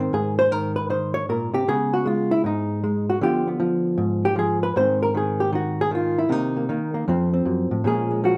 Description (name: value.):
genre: solo jazz.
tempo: 156 BPM.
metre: 4/4.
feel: swing 66% on 8ths.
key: Ab mixolydian.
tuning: A4 = 440 Hz.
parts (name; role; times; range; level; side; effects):
hollow-body jazz guitar; solo; 0.0-8.4 s; F2 to Db5; -22 LUFS; equal; none.
room: moderate large studio reverb, RT60 0.8 s.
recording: none.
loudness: -22 LUFS.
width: mono.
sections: 0.0-8.4 A section.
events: hollow-body jazz guitar solo 0.0-8.4.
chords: 0.0 Abadd9; 1.7 Dbsus2; 3.2 Ddim7; 4.8 Ab; 6.3 Cm7; 7.1 F7b9; 7.8 Bbm7.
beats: | 0.12 0.51 0.90 1.28 | 1.67 2.05 2.44 2.82 | 3.21 3.59 3.98 4.37 | 4.75 5.14 5.52 5.91 | 6.29 6.68 7.07 7.45 | 7.84 8.22.